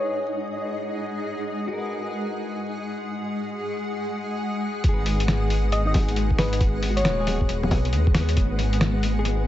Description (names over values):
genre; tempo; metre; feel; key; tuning
future garage; 136 BPM; 4/4; swing 64% on 16ths; G# minor; A4 = 439 Hz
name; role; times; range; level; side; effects
soft struck synth lead; melody; 0.0-0.5, 5.7-7.6 s; B4 to D#5; -30 LUFS; left 1 dB; chorus, tape echo
granular cloud pad; sustained chords; 0.0-9.5 s; G#3 to F#5; -29 LUFS; left 1 dB; built-in reverb, sidechain pumping
flickering grainy texture; texture; 0.0-9.5 s; B3 to D#5; -35 LUFS; equal; built-in reverb
clean electric guitar; accompaniment; 1.7-9.5 s; D#4 to B4; -34 LUFS; left 3 dB; sidechain pumping, low-pass filter, tape echo
dark detuned saw bass; bass; 4.8-9.5 s; D#1 to D#2; -24 LUFS; equal; sidechain pumping
electronic kick drum; drums; 4.8-8.5 s; none; -22 LUFS; equal; none
lo-fi sampler-style drum kit; drums; 4.8-9.4 s; bongos, hi-hat, snare drum; -26 LUFS; left 1 dB; tape echo
room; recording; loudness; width
moderate spring reverb, RT60 1.6 s; echo-heavy mix, vinyl crackle, nothing above 7.9 kHz; -22 LUFS; side -13 dB against mid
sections
0.0-4.8 A section; 4.8-9.5 B section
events
none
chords
0.0 G#m7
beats
0.43 0.87 | 1.31 1.75 2.19 2.63 | 3.08 3.52 3.96 4.40 | 4.84 5.28 5.72 6.16 | 6.61 7.05 7.49 7.93 | 8.37 8.81 9.25